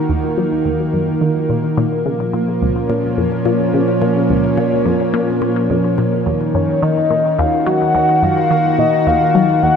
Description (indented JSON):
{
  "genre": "ambient, sequencer-driven space music",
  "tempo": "107 BPM",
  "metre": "4/4",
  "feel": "straight",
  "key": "Eb minor",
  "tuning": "A4 = 444 Hz",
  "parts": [
    { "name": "lush unison pad", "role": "sustained chords", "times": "0.0-9.8 s", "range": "Bb2 to Gb4", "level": "-16 LUFS", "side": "right 1 dB", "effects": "chorus" },
    { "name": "resonant blip pluck", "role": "riff", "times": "0.1-9.7 s", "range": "Db2 to Gb3", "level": "-20 LUFS", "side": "left 2 dB", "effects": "chorus, phaser, ping-pong delay" },
    { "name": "soft octave-layered synth lead", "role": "melody", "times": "6.5-9.8 s", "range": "Db5 to Gb5", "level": "-15 LUFS", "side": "left 2 dB", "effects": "chorus, ping-pong delay" }
  ],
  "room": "wet plate reverb, RT60 3.2 s",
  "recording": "none",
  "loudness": "-13 LUFS",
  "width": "side -7 dB against mid",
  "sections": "0.0-9.8 A section",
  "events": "none",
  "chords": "0.0 Ebmadd9; 1.8 Bbm; 6.3 Ebmadd9"
}